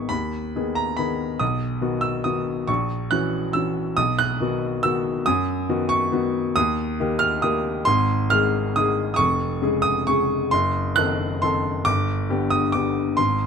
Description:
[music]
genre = classical, piano waltz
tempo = 138 BPM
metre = 3/4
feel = uneven beats, rubato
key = unclear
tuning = A4 = 440 Hz
[part]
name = clear baby grand piano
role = solo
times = 0.0-13.5 s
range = F1 to F#6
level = -20 LUFS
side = equal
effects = none
[sound]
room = light reverb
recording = close, detailed microphones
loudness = -20 LUFS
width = side -6 dB against mid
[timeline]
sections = 0.0-13.5 A section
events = none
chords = 0.0 G#m; 1.4 B; 2.7 F#7/A#; 4.0 B; 6.6 Eb; 7.9 Ab; 9.2 Db/F; 10.5 F#dim7; 11.9 G

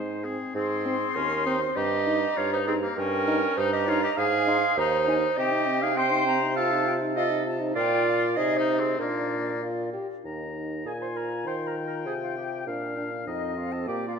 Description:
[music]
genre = quick classical-period movement for wind quintet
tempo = 100 BPM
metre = 2/4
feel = straight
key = Ab major, Eb major from 5.4 s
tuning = A4 = 440 Hz
[part]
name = clear oboe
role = second line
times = 0.0-14.2 s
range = Bb3 to Bb5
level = -30 LUFS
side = left 5 dB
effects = none
[part]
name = clear French horn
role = accompaniment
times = 0.0-14.2 s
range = Ab3 to G4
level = -32 LUFS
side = equal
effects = none
[part]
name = warm clarinet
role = accompaniment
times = 0.0-14.2 s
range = C4 to G5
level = -28 LUFS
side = right 7 dB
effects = none
[part]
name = mellow bassoon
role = bass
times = 0.0-14.2 s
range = Eb2 to Eb3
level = -30 LUFS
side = right 2 dB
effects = none
[part]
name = concert flute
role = melody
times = 0.6-14.1 s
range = D5 to C6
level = -33 LUFS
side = left 8 dB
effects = none
[sound]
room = wet concert hall reverb, RT60 2.3 s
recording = none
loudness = -24 LUFS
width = side -6 dB against mid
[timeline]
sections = 0.6-10.2 A section; 10.2-14.2 B section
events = none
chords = 0.0 Ab; 1.8 Eb/G; 4.2 Ab; 5.4 Cm; 6.6 F5/C; 7.8 Bb; 8.4 Ab/C; 9.0 Bb; 10.2 Eb5; 10.9 Bb5; 11.5 Eb; 12.7 Bb; 13.3 F5

